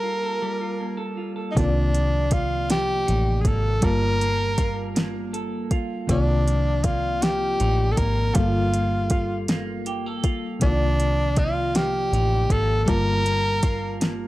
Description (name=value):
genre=slow six-eight R&B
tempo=53 BPM (dotted quarters)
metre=6/8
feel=straight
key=unclear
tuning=A4 = 440 Hz
part: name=breathy tenor saxophone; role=melody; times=0.0-14.0 s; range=D4 to Bb4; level=-25 LUFS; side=equal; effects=none
part: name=clean electric guitar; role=second line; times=0.0-14.3 s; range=C3 to A4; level=-31 LUFS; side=right 3 dB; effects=wide subtle chorus, analog delay
part: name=FM electric piano with auto-pan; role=accompaniment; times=0.0-14.3 s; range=C3 to A5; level=-30 LUFS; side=left 1 dB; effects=none
part: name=vintage muted fingered electric bass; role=bass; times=1.6-14.3 s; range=G1 to C#2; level=-24 LUFS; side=equal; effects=transformer saturation
part: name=smooth R&B drum kit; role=drums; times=1.6-14.2 s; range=hi-hat, kick drum, snare drum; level=-23 LUFS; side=equal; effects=overdrive
room=little or no reverb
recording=dry, gritty hardware recording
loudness=-20 LUFS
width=side -17 dB against mid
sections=0.0-1.6 A section; 1.6-14.3 B section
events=break 0.0-1.6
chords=0.0 Gm9; 1.6 Cm11; 3.8 Gm9; 6.1 Cm11; 8.4 Gm9; 10.6 Cm11; 12.9 Gm9